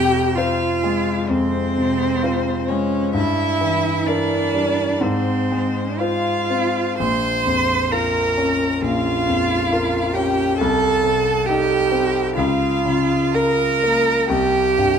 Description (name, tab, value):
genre	classical, slow romantic movement for piano trio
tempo	59-69 BPM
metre	4/4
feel	rubato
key	F minor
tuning	A4 = 436 Hz
part	rich violin	melody	0.0-15.0 s	C5 to C6	-25 LUFS	left 7 dB	none
part	rich cello	second line	0.0-15.0 s	C4 to C5	-20 LUFS	right 6 dB	none
part	warm grand piano	accompaniment	0.0-15.0 s	Bb1 to C5	-21 LUFS	left 3 dB	none
room	moderate scoring stage reverb, RT60 1.7 s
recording	close, detailed microphones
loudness	-17 LUFS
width	side -7 dB against mid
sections	0.0-15.0 A section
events	none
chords	0.0 Fm; 3.1 Edim/G; 5.0 Fm/Ab; 7.0 Bbm; 10.6 Adim/C; 12.4 Bbm/Db; 14.3 C5